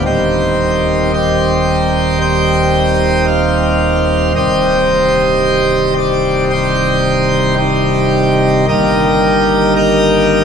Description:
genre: classical, chorale-style piece for pipe organ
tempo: 56 BPM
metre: 4/4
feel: straight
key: C minor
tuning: A4 = 440 Hz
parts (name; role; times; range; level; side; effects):
- pipe organ, plenum; solo; 0.0-10.4 s; C1 to G5; -10 LUFS; equal; none
room: wet cathedral reverb, RT60 4.7 s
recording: none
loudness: -11 LUFS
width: side -7 dB against mid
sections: 0.0-10.4 A section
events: none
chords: 0.1 Cm/Eb; 4.4 Cm; 8.7 Eb/G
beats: | 0.06 1.14 2.22 3.29 | 4.36 5.44 6.51 7.58 | 8.69 9.77

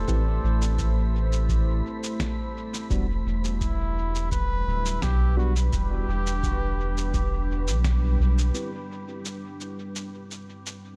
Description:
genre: ambient dub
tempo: 85 BPM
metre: 4/4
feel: straight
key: A minor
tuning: A4 = 440 Hz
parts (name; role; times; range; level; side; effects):
- trumpet with cup mute; melody; 0.0-7.8 s; E4 to B4; -38 LUFS; equal; dub echo
- deep dark ambient pad; sustained chords; 0.0-11.0 s; G3 to E5; -37 LUFS; equal; chorus, built-in reverb, vintage 12-bit sampler grit
- soft dub sub bass; bass; 0.0-8.5 s; D1 to B1; -26 LUFS; equal; none
- wind-like tuned noise texture; texture; 0.1-8.6 s; B5; -48 LUFS; equal; built-in reverb
- tine electric piano; stabs; 0.1-8.7 s; G3 to B4; -41 LUFS; equal; phaser, low-pass filter, dub echo
- electronic kick drum; drums; 0.1-8.0 s; none; -33 LUFS; equal; none
- electronic shaker and snare drum; drums; 0.1-10.8 s; none; -38 LUFS; equal; studio reverb, dub echo
room: little or no reverb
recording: none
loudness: -26 LUFS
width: mono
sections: 0.0-8.6 A section; 8.6-11.0 B section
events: band accent 7.8-8.2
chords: 0.0 Am7; 2.9 Em7; 8.6 Am7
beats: | 0.08 0.79 1.49 2.20 | 2.90 3.61 4.32 5.02 | 5.73 6.43 7.14 7.84 | 8.55 9.26 9.96 10.67

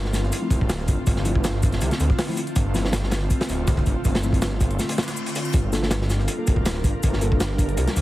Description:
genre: drum and bass, jungle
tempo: 161 BPM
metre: 4/4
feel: straight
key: unclear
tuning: A4 = 440 Hz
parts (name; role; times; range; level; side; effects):
- ethereal airy pad; sustained chords; 0.0-8.0 s; D3 to Bb4; -29 LUFS; equal; ensemble chorus, built-in reverb
- detuned saw bass; bass; 0.0-8.0 s; D1 to D2; -24 LUFS; equal; none
- crunchy breakbeat drum kit; drums; 0.0-8.0 s; hi-hat, kick drum, snare drum; -23 LUFS; equal; none
- breakbeat sampler-style drum kit; drums; 0.1-8.0 s; hi-hat, shaker, snare drum; -35 LUFS; left 1 dB; high-pass filter on perc, high-pass filter on snare, high-pass filter on hats
- mellow tine electric piano; stabs; 0.4-7.4 s; F3 to A4; -32 LUFS; left 2 dB; none
- reverse cymbal; sound effects; 5.0-5.5 s; none; -36 LUFS; left 3 dB; none
room: light reverb, small room reverb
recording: heavily compressed radio sound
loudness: -20 LUFS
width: side -16 dB against mid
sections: 0.0-8.0 A section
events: break 4.8-5.5; reverse cymbal 5.0-5.5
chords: 0.0 Dm7; 5.5 Gm7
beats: 0.32 0.70 | 1.07 1.44 1.81 2.19 | 2.56 2.93 3.31 3.68 | 4.05 4.42 4.79 5.17 | 5.54 5.91 6.29 6.66 | 7.03 7.40 7.78

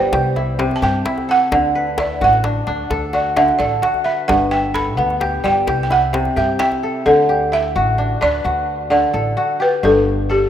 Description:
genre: west african traditional, West African string and xylophone music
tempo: 86 BPM (dotted quarters)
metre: 12/8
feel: straight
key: D mixolydian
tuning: A4 = 440 Hz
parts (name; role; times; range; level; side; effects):
- balafon; melody; 0.0-10.5 s; G4 to B5; -18 LUFS; right 1 dB; none
- kora; arpeggios; 0.0-10.5 s; G2 to E5; -18 LUFS; equal; none
- upright bass; bass; 0.0-10.5 s; G1 to G2; -23 LUFS; left 1 dB; none
- djembe; percussion; 0.1-6.8 s; none; -28 LUFS; left 2 dB; none
room: wet lush hall reverb, RT60 2.8 s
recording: rough home demo mix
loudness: -14 LUFS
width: side -10 dB against mid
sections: 0.0-7.1 A section; 7.1-10.5 B section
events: balafon solo 0.0-7.1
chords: 0.1 C; 1.5 D; 4.3 G; 5.7 C; 7.1 D; 9.8 N.C.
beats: 0.13 0.82 | 1.52 2.21 2.90 3.60 | 4.29 4.98 5.68 6.37 | 7.06 7.76 8.45 9.14 | 9.84

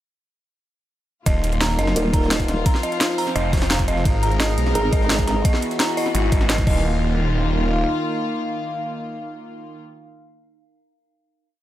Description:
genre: dark technical drum and bass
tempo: 172 BPM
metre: 4/4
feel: straight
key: unclear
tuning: A4 = 438 Hz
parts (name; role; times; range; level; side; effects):
- rich studio string section; sustained chords; 1.3-9.8 s; Eb3 to Bb4; -26 LUFS; left 1 dB; sidechain pumping
- dark detuned synth bell; arpeggios; 1.3-7.0 s; Eb5 to Bb5; -27 LUFS; right 3 dB; chorus, sidechain pumping, digital delay
- snarling distorted saw bass; bass; 1.3-7.9 s; Eb1 to Cb2; -21 LUFS; equal; distortion, sidechain pumping
- drum and bass drum kit; drums; 1.3-6.7 s; crash cymbal, hi-hat, snare drum; -24 LUFS; equal; overdrive
- electronic kick drum; drums; 1.3-6.7 s; none; -20 LUFS; equal; overdrive
- jungle sampler-style drum kit; drums; 1.3-6.7 s; hi-hat, ride cymbal, snare drum; -35 LUFS; equal; none
- warbly tape-like pad; texture; 1.6-10.1 s; Eb4 to Ab5; -28 LUFS; equal; chorus, built-in reverb, sidechain pumping
- formant-sweep wobble bass; bass; 2.0-2.6, 4.8-5.4 s; Eb1 to Ab1; -23 LUFS; equal; chorus
room: light reverb, digital ambience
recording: none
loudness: -18 LUFS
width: side -13 dB against mid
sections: 1.3-6.8 drop; 6.8-9.6 final note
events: drop 1.3-6.8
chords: 1.3 Ebm; 2.7 Fm; 4.1 Abm; 5.4 E; 6.7 Eb5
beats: | 1.26 1.61 1.96 2.31 | 2.66 3.01 3.36 3.71 | 4.05 4.40 4.75 5.10 | 5.45 5.80 6.15 6.50 | 6.84 7.19 7.54 7.89 | 8.24 8.59 8.94 9.29

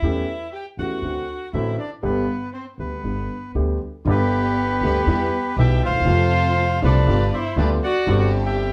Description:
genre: tango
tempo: 120 BPM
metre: 4/4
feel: rubato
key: G major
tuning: A4 = 443 Hz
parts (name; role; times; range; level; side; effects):
- bandoneon; melody; 0.0-8.7 s; G4 to G5; -28 LUFS; equal; none
- warm violin; second line; 0.0-8.7 s; B3 to G4; -30 LUFS; equal; none
- warm concert grand piano; accompaniment; 0.0-8.7 s; G1 to G4; -25 LUFS; equal; none
- upright bass; bass; 0.0-8.7 s; G1 to F2; -25 LUFS; equal; none
- warm studio string section; stabs; 4.1-8.7 s; B3 to A4; -34 LUFS; equal; none
room: wet studio ambience, RT60 0.5 s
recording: heard from further back in the room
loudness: -21 LUFS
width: mono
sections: 0.0-4.1 A section; 4.1-8.7 B section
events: none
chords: 0.0 A7/E; 1.0 D7; 2.0 G; 5.1 Em; 6.1 F; 7.1 G7; 8.1 Csus2/G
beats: | 0.03 0.53 1.03 1.53 | 2.03 2.53 3.04 3.55 | 4.07 4.57 5.08 5.58 | 6.08 6.58 7.08 7.58 | 8.07 8.56

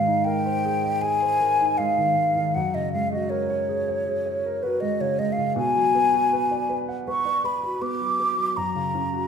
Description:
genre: classical, impressionist duo for flute and grand piano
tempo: 79 BPM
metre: 4/4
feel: rubato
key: F# major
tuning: A4 = 440 Hz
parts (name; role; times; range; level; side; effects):
- mellow hollow concert flute; melody; 0.0-9.3 s; B4 to D6; -22 LUFS; left 1 dB; none
- dark baby grand piano; accompaniment; 0.0-9.3 s; F#2 to F#5; -27 LUFS; right 2 dB; none
room: wet recital hall reverb, RT60 1.4 s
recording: minimal, uncompressed stereo recording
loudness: -21 LUFS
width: side -7 dB against mid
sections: 0.0-9.3 A section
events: none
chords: 0.0 G#maj9; 2.6 F#add9; 5.6 Bm6; 8.6 F#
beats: 0.25 1.02 1.79 | 2.55 3.31 4.06 4.81 | 5.56 6.31 7.07 7.82 | 8.57

